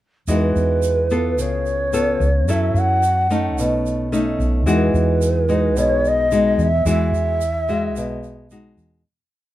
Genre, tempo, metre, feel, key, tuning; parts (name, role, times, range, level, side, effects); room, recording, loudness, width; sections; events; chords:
bossa nova; 110 BPM; 4/4; straight; E major; A4 = 440 Hz
breathy mellow long shakuhachi; melody; 0.3-8.5 s; B4 to F#5; -20 LUFS; equal
nylon-string guitar; accompaniment; 0.3-9.0 s; B2 to A4; -21 LUFS; left 1 dB
hollow-body short-scale fingered electric bass; bass; 0.3-9.0 s; B1 to F#2; -21 LUFS; right 1 dB
tube shaker; percussion; 0.3-9.1 s; -37 LUFS; right 8 dB
light reverb; minimal, uncompressed stereo recording; -16 LUFS; side -14 dB against mid
0.3-9.1 A section
fade-out 6.9-9.1
0.3 Emaj9; 1.4 C#7b13; 2.5 F#m7; 3.6 B9; 4.7 Emaj9